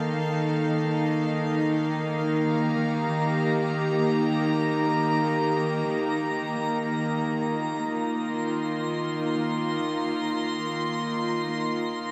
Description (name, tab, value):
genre	ambient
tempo	free time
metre	none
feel	none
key	Eb lydian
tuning	A4 = 439 Hz
part	rich chamber string section	sustained chords	0.0-12.1 s	Eb3 to C6	-26 LUFS	equal	none
part	felt-muted upright piano	arpeggios	0.0-1.9 s	none	barely audible	none	none
part	twinkling granular texture	texture	0.0-12.1 s	G5 to Bb6	-43 LUFS	equal	built-in reverb
room	wet lush hall reverb, RT60 2.9 s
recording	cassette tape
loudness	-26 LUFS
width	mono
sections	0.0-1.9 A section; 1.9-12.1 B section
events	fade-in on synth texture 1.9-12.1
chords	0.0 Gm7/Eb; 1.9 Eb